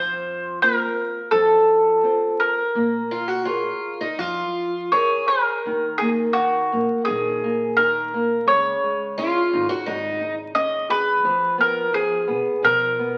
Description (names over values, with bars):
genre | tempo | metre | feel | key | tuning
fado-style ballad | 85 BPM | 4/4 | rubato | Bb minor, Eb minor from 5.6 s | A4 = 441 Hz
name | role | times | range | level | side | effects
mandolin | melody | 0.0-13.2 s | Gb4 to Eb5 | -22 LUFS | equal | none
flamenco guitar | accompaniment | 0.0-13.2 s | Db3 to Db5 | -29 LUFS | equal | none
upright bass | bass | 0.0-13.2 s | Ab1 to Cb3 | -42 LUFS | equal | none
picked twelve-string acoustic guitar | second line | 3.1-10.3 s | Eb4 to Ab4 | -26 LUFS | equal | none
room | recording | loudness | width
wet large studio reverb, RT60 1.1 s | very old 78 rpm record, vinyl crackle | -21 LUFS | mono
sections
0.0-5.6 A section; 5.6-13.2 B section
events
none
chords
0.0 Fsus4; 1.3 F; 2.7 Bbm7; 5.6 Ebm; 8.5 Dbsus2; 11.2 Fdim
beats
0.62 1.32 2.03 | 2.74 3.45 4.18 4.92 | 5.64 6.36 7.08 7.78 | 8.48 9.19 9.87 10.56 | 11.25 11.94 12.63